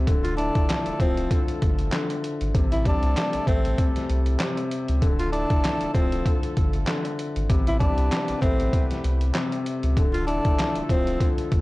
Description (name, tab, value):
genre	hip hop, boom-bap hip-hop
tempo	97 BPM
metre	4/4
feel	swing 56% on 16ths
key	D minor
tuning	A4 = 440 Hz
part	warm upright piano	accompaniment	0.0-11.6 s	C3 to E4	-29 LUFS	left 3 dB	cassette tape
part	warm sub bass	bass	0.0-11.6 s	D1 to C#2	-25 LUFS	equal	tube saturation
part	warm horn section	stabs	0.1-11.6 s	A3 to B4	-37 LUFS	equal	analog delay
part	trip hop sampler-style drum kit	drums	0.1-11.6 s	handclaps, hi-hat, kick drum, snare drum	-24 LUFS	equal	none
part	warm tenor saxophone	melody	0.2-11.4 s	C4 to F4	-27 LUFS	equal	analog delay
room	little or no reverb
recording	dry, gritty hardware recording, transformer saturation, cassette tape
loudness	-21 LUFS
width	side -20 dB against mid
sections	0.0-11.6 A section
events	none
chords	0.1 Dmadd9; 2.5 Am7; 5.0 Dmadd9; 7.5 Am9; 10.0 Dmadd9